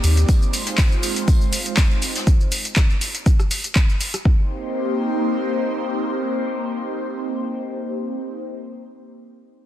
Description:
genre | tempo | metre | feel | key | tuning
deep house | 121 BPM | 4/4 | swing 54% on 16ths | C minor | A4 = 440 Hz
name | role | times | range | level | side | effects
airy breathy pad | sustained chords | 0.0-8.4 s | Ab3 to D5 | -24 LUFS | equal | chorus, phaser, vintage 12-bit sampler grit, sidechain pumping
deep house drum kit | drums | 0.0-4.2 s | handclaps, hi-hat, rim click, shaker | -24 LUFS | equal | overdrive, small room reverb
jazz brush drum kit | drums | 0.0-2.3 s | hi-hat, snare drum, tambourine | -32 LUFS | right 1 dB | high-pass filter on hats, small room reverb, soft clipping on snare, high-pass filter on snare, high-pass filter on perc, high-pass filter on room
electronic kick drum | drums | 0.3-4.4 s | none | -16 LUFS | equal | overdrive, small room reverb
room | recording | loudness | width
light reverb, small room ambience | dense, heavily limited modern master | -18 LUFS | side -12 dB against mid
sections
0.0-4.3 A section; 4.3-8.2 B section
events
drop 0.0-4.3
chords
0.3 Fm7; 2.3 N.C.; 4.3 Cm7

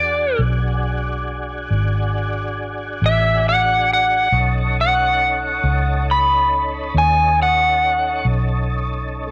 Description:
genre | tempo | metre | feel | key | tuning
slow blues | 46 BPM (dotted quarters) | 12/8 | straight | unclear | A4 = 440 Hz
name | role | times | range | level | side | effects
overdriven slide guitar | melody | 0.0-8.3 s | D5 to B5 | -19 LUFS | equal | cassette tape
tonewheel organ | sustained chords | 0.0-9.3 s | A3 to A4 | -29 LUFS | equal | slow rotary speaker, chorus vibrato, cassette tape
vintage muted fingered electric bass | bass | 0.0-9.3 s | G#1 to E2 | -23 LUFS | equal | none
room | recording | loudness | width
light reverb, digital ambience | home recording on cassette | -18 LUFS | mono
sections
0.0-9.3 A section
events
none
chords
0.0 E9 (rootless); 4.3 B9

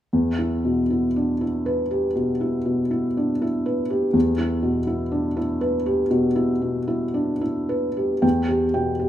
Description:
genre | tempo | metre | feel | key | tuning
neoclassical minimalist piano | 54-62 BPM | 4/4 | rubato | E minor | A4 = 440 Hz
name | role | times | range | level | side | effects
felt-muted upright piano | solo | 0.1-9.1 s | E2 to G5 | -20 LUFS | equal | none
room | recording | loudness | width
light reverb | minimal, uncompressed stereo recording | -20 LUFS | side -11 dB against mid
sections
0.1-8.2 A section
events
none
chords
0.1 Em

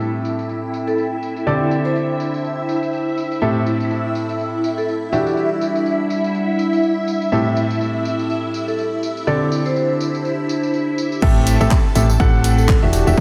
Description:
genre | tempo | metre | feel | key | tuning
piano house | 123 BPM | 4/4 | swing 57% on 16ths | A dorian | A4 = 440 Hz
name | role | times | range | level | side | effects
string machine, violins | sustained chords | 0.0-13.2 s | E4 to A5 | -26 LUFS | equal | ensemble chorus, sidechain pumping
clear baby grand piano | riff | 0.0-13.2 s | A2 to F#5 | -24 LUFS | equal | sidechain pumping, analog delay
garage drum kit | drums | 0.0-13.2 s | crash cymbal, handclaps, hi-hat, tambourine | -34 LUFS | equal | overdrive, low-pass filter on hats, studio reverb, low-pass filter on snare, low-pass filter on cymbals, low-pass filter on perc
warbly tape-like pad | texture | 0.0-13.2 s | G3 to G5 | -28 LUFS | equal | chorus, built-in reverb, sidechain pumping
vibraphone with medium mallets | melody | 0.9-13.1 s | E4 to C5 | -27 LUFS | equal | analog delay
solid FM bass | bass | 11.2-13.1 s | E1 to A1 | -19 LUFS | equal | sidechain pumping
electronic kick drum | drums | 11.2-13.2 s | none | -18 LUFS | equal | studio reverb
room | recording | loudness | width
moderate lush hall reverb, RT60 2.0 s | dreamy mix soaked in reverb | -19 LUFS | mono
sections
0.0-11.2 A section; 11.2-13.2 B section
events
filter sweep on string machine 0.0-11.2; drop 11.2-13.2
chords
0.0 Am7; 1.5 D7sus4; 3.4 Am7; 5.1 Em9; 7.3 Am7; 9.3 D7sus4; 11.2 Am7

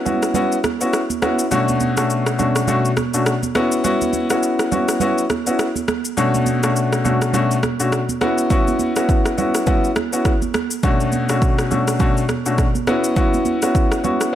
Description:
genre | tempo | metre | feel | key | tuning
afrobeats | 103 BPM | 4/4 | swing 58% on 16ths | B minor | A4 = 441 Hz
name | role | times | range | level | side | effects
clear grand piano | accompaniment | 0.0-14.3 s | B2 to F#4 | -18 LUFS | left 2 dB | none
deep house drum kit | drums | 0.1-14.3 s | kick drum, rim click, shaker | -22 LUFS | equal | overdrive
congas | percussion | 0.1-14.2 s | none | -25 LUFS | right 8 dB | none
room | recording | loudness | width
light reverb | none | -16 LUFS | side -11 dB against mid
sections
0.0-14.3 A section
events
none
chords
0.0 F#7sus4; 1.5 Bm7; 3.6 F#7sus4; 6.2 Bm7; 8.2 F#7sus4; 10.8 Bm7; 12.9 F#7sus4

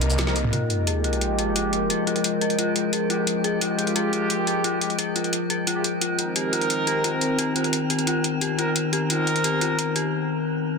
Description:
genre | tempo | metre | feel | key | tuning
dark technical drum and bass | 175 BPM | 4/4 | straight | F minor | A4 = 439 Hz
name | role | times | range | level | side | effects
metallic inharmonic drone | sustained chords | 0.0-10.8 s | C3 to G5 | -26 LUFS | left 5 dB | chorus, built-in reverb
snarling distorted saw bass | bass | 0.0-0.5 s | C2 | -24 LUFS | equal | distortion, overdrive
drum and bass drum kit | drums | 0.0-10.0 s | cabasa, hi-hat, rim click, snare drum, toms | -26 LUFS | equal | none
warbly tape-like pad | texture | 0.0-10.1 s | C4 to G5 | -31 LUFS | right 2 dB | chorus, built-in reverb
warm brass ensemble | stabs | 0.3-10.1 s | Ab3 to Bb4 | -28 LUFS | right 3 dB | low-pass filter, ping-pong delay
dark detuned synth bell | arpeggios | 0.5-10.1 s | F4 to Ab4 | -29 LUFS | left 2 dB | chorus, tremolo, low-pass filter, ping-pong delay
sub drop | sound effects | 0.5-1.9 s | none | -27 LUFS | right 1 dB | none
room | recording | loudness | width
moderate plate reverb, RT60 1.6 s | dense, heavily limited modern master | -21 LUFS | side -4 dB against mid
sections
0.5-10.8 A section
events
drum fill 0.2-0.5; impact 0.5-1.9; filter sweep on brass ensemble 0.5-10.8; break 10.1-10.8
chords
0.0 Cm7; 0.5 Fmadd9; 6.0 Cm7

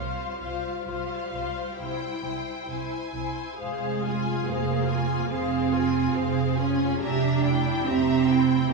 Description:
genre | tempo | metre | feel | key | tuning
classical, slow romantic movement for string orchestra | 65-74 BPM | 4/4 | rubato | F minor | A4 = 440 Hz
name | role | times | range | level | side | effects
warm studio violin section | melody | 0.0-8.7 s | F5 to Bb5 | -35 LUFS | left 5 dB | none
warm symphonic violin section | second line | 0.0-8.7 s | Ab4 to G5 | -34 LUFS | left 4 dB | none
warm symphonic viola section | accompaniment | 0.0-8.7 s | E4 to Ab4 | -32 LUFS | left 1 dB | none
warm studio cello section | bass | 0.0-8.7 s | G3 to D4 | -27 LUFS | right 5 dB | none
warm symphonic double bass section | bass | 0.0-8.7 s | F1 to C2 | -28 LUFS | right 5 dB | none
room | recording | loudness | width
wet scoring stage reverb, RT60 2.0 s | studio ambience | -24 LUFS | side -2 dB against mid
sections
0.0-8.7 A section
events
none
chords
0.0 Csus4; 1.8 C; 3.6 Fm; 7.0 Edim/F

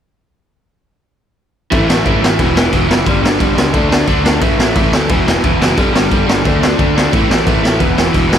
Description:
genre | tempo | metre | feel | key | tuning
punk rock | 177 BPM | 4/4 | straight | unclear | A4 = 440 Hz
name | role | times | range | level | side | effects
overdriven electric guitar | riff | 1.7-8.4 s | E2 to D4 | -14 LUFS | equal | none
fuzz picked electric bass | bass | 1.7-8.4 s | E1 to D2 | -19 LUFS | equal | overdrive
raw garage drum kit | drums | 1.7-8.4 s | crash cymbal, kick drum, snare drum | -14 LUFS | equal | none
room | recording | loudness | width
little or no reverb | none | -10 LUFS | side -9 dB against mid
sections
1.7-8.4 A section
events
none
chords
1.7 A5; 2.4 E5; 3.1 G5; 3.7 D5; 4.4 A5; 5.1 E5; 5.8 G5; 6.4 D5; 7.1 A5; 7.8 E5

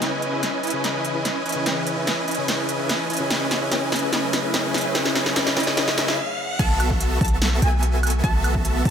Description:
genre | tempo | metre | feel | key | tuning
future bass | 146 BPM | 4/4 | half-time | F# dorian | A4 = 440 Hz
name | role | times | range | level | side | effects
tine electric piano | accompaniment | 0.0-6.2 s | C#3 to E5 | -28 LUFS | left 2 dB | medium stereo tremolo, sidechain pumping, ping-pong delay
ethereal airy pad | sustained chords | 0.0-8.9 s | E3 to D#5 | -34 LUFS | right 1 dB | ensemble chorus, built-in reverb, sidechain pumping
supersaw chords | riff | 0.0-8.9 s | B3 to A5 | -24 LUFS | right 1 dB | wide subtle chorus, sidechain pumping, ping-pong delay
big-room dance drum kit | drums | 0.0-8.9 s | crash cymbal, hi-hat, snare drum, woodblock | -24 LUFS | equal | none
riser | sound effects | 3.1-6.6 s | none | -33 LUFS | equal | none
wide unison pluck | arpeggios | 6.6-8.9 s | G#5 to A5 | -30 LUFS | equal | sidechain pumping, ping-pong delay
warm 808-style bass | bass | 6.6-8.9 s | B1 | -21 LUFS | equal | sidechain pumping
electronic kick drum | drums | 6.6-8.9 s | none | -23 LUFS | equal | none
room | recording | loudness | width
moderate digital room reverb, RT60 1.2 s, digital ambience | none | -19 LUFS | side -8 dB against mid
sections
0.0-6.6 A section; 6.6-8.9 B section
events
build-up 0.0-6.6; drum fill 0.0-6.2; stop 6.2-6.6; drop 6.6-8.9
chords
0.0 C#m9; 3.3 F#m9; 6.6 B7sus4

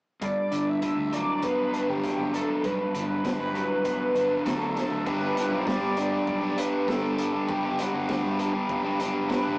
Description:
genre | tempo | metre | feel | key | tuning
indie rock | 99 BPM | 4/4 | straight | unclear | A4 = 441 Hz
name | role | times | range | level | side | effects
overdriven synth lead | melody | 0.2-9.6 s | F#4 to E5 | -29 LUFS | equal | phaser
overdriven electric guitar | riff | 0.2-9.6 s | G2 to G4 | -26 LUFS | equal | spring reverb
fuzz fingered electric bass | bass | 0.2-9.6 s | F#1 to G2 | -36 LUFS | equal | overdrive
raw garage drum kit | drums | 0.2-9.4 s | crash cymbal, hi-hat, kick drum, snare drum | -34 LUFS | equal | none
room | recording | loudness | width
wet studio reverb, RT60 0.6 s | rough rehearsal-room recording, small speaker sound | -24 LUFS | side -27 dB against mid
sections
0.2-5.1 A section; 5.1-9.6 B section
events
none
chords
0.2 Gmaj7

